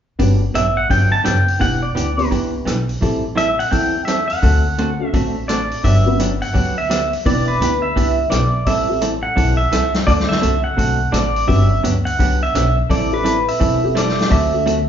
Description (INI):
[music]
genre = country, western swing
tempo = 170 BPM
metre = 4/4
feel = swing 63% on 8ths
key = G major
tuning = A4 = 439 Hz
[part]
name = honky-tonk upright piano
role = accompaniment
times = 0.2-14.7 s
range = G3 to G4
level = -25 LUFS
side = left 2 dB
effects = none
[part]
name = vintage hollow-body jazz guitar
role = accompaniment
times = 0.2-14.8 s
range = D3 to A4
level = -22 LUFS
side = right 2 dB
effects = none
[part]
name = upright bass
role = bass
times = 0.2-14.9 s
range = E1 to E2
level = -19 LUFS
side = left 1 dB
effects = none
[part]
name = vintage drum kit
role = drums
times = 0.2-14.8 s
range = hi-hat, kick drum, rim click, snare drum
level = -22 LUFS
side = left 1 dB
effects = none
[part]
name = pedal steel guitar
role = melody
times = 0.6-14.9 s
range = B4 to A5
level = -19 LUFS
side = right 1 dB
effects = none
[sound]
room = wet large studio reverb, RT60 1.1 s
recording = band playing live in one room, nothing above 7.5 kHz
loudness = -14 LUFS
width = side -9 dB against mid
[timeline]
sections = 0.2-5.8 A section; 5.8-14.9 B section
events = none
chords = 0.2 Gmaj7; 1.6 Em7; 3.0 Am7; 4.4 D7; 5.8 Gmaj7; 7.3 Em7; 8.7 Am7; 10.1 D7; 11.5 Gmaj7; 12.9 Am7; 14.3 D7